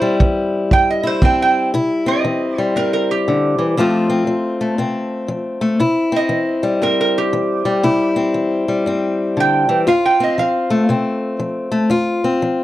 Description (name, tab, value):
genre	acoustic country blues, solo or duo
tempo	118 BPM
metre	4/4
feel	swing 63% on 8ths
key	C major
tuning	A4 = 440 Hz
part	lap resonator guitar	melody	0.0-10.9 s	G4 to G5	-18 LUFS	right 4 dB	none
part	fingerpicked old ladder-braced acoustic guitar	accompaniment	0.0-12.6 s	F2 to F4	-16 LUFS	left 2 dB	none
part	kick drum	drums	0.2-1.4 s	none	-14 LUFS	right 1 dB	none
room	little or no reverb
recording	dry, close 1970s-style studio recording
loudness	-15 LUFS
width	side -14 dB against mid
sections	0.0-1.7 A section; 1.7-12.6 A section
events	resonator guitar played with a steel bar solo 0.0-1.7, 1.7-12.6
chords	0.0 C; 3.8 F; 5.8 C; 9.9 F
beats	0.20 0.71 1.22 | 1.73 2.24 2.75 3.26 | 3.77 4.28 4.79 5.30 | 5.81 6.32 6.83 7.34 | 7.85 8.35 8.86 9.37 | 9.88 10.39 10.90 11.40 | 11.91 12.42